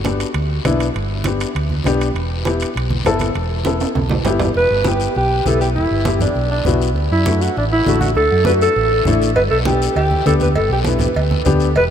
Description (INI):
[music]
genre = latin, cumbia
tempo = 200 BPM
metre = 4/4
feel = straight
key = E minor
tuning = A4 = 441 Hz
[part]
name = warm upright piano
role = accompaniment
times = 0.0-11.7 s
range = A3 to A4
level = -21 LUFS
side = left 5 dB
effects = none
[part]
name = hollow-body short-scale fingered electric bass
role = bass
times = 0.0-11.9 s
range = E1 to F#2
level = -19 LUFS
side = equal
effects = none
[part]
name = congas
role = percussion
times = 0.0-11.9 s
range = none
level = -24 LUFS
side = right 2 dB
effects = none
[part]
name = guiro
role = percussion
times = 0.0-11.9 s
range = none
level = -31 LUFS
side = left 10 dB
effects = none
[part]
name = timbales and cowbell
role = percussion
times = 0.1-4.5, 9.4-11.9 s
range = none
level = -28 LUFS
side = right 6 dB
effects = none
[part]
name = breathy alto saxophone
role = melody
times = 4.6-11.8 s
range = D4 to B4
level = -17 LUFS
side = right 1 dB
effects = tape echo
[sound]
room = moderate huge ambient reverb, RT60 7.9 s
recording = in a vast, echoing space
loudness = -14 LUFS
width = side -8 dB against mid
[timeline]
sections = 0.0-4.6 A section; 4.6-11.9 B section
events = drum fill 3.7-4.6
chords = 0.0 G; 2.2 Em; 7.0 D; 9.4 G